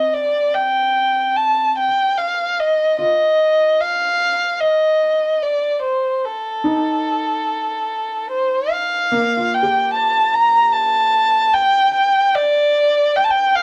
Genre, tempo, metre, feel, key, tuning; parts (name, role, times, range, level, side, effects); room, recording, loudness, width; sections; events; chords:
folk; 74 BPM; 3/4; straight; Bb major; A4 = 442 Hz
dark violin; melody; 0.0-13.6 s; A4 to Bb5; -17 LUFS; equal
felt-muted upright piano; arpeggios; 0.0-12.1 s; Bb3 to G4; -28 LUFS; equal
moderate studio reverb, RT60 0.7 s; -17 LUFS; mono
0.0-9.1 A section; 9.1-13.6 B section
0.0 Csus2; 1.8 N.C.; 9.1 Bb5; 11.6 G5